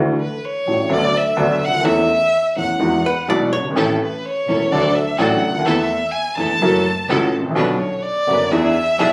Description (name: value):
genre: tango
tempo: 126 BPM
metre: 4/4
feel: rubato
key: A major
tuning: A4 = 440 Hz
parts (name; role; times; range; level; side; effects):
- warm upright piano; accompaniment; 0.0-9.1 s; E1 to A4; -21 LUFS; equal; none
- rich double bass; bass; 0.0-9.1 s; E1 to E2; -28 LUFS; equal; none
- warm violin; second line; 0.2-9.1 s; B4 to A5; -22 LUFS; equal; none
- archtop guitar, miked and amplified; second line; 3.1-3.9 s; B4 to D5; -24 LUFS; equal; none
- rich symphonic string section; stabs; 3.8-9.1 s; B3 to B4; -27 LUFS; equal; none
room: moderate studio reverb, RT60 1.0 s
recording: recorded on a phone in the room, club reverb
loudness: -18 LUFS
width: mono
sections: 0.0-9.1 A section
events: violin solo 0.0-9.1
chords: 0.0 Dadd9; 0.9 Bm7/D; 1.8 A/E; 2.8 Eadd9; 3.8 A; 4.7 D; 5.7 Asus2/E; 6.6 F#m7; 7.6 Bmadd9; 8.5 E7